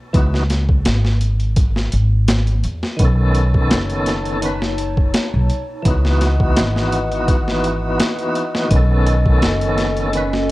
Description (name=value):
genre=trip hop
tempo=84 BPM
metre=4/4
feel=swing 53% on 16ths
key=C# minor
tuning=A4 = 442 Hz
part: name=tonewheel organ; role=accompaniment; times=0.1-10.3 s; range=D#3 to B4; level=-21 LUFS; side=equal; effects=overdrive, fast rotary speaker, tremolo, tape echo
part: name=upright bass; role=bass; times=0.1-10.5 s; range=F#1 to E2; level=-18 LUFS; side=equal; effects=none
part: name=boom bap sampler-style drum kit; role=drums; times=0.1-10.5 s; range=hi-hat, kick drum, snare drum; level=-19 LUFS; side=equal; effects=overdrive
part: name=warbly tape-like pad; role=sustained chords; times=3.0-10.5 s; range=E3 to A5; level=-25 LUFS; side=left 1 dB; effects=chorus, built-in reverb, vintage 12-bit sampler grit
room=light reverb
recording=worn, warbling old tape, cassette tape, warbly pitch drift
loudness=-15 LUFS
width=side -18 dB against mid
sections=0.0-10.5 A section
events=none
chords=0.1 C#m11; 3.0 B9; 5.9 C#m11; 8.7 B9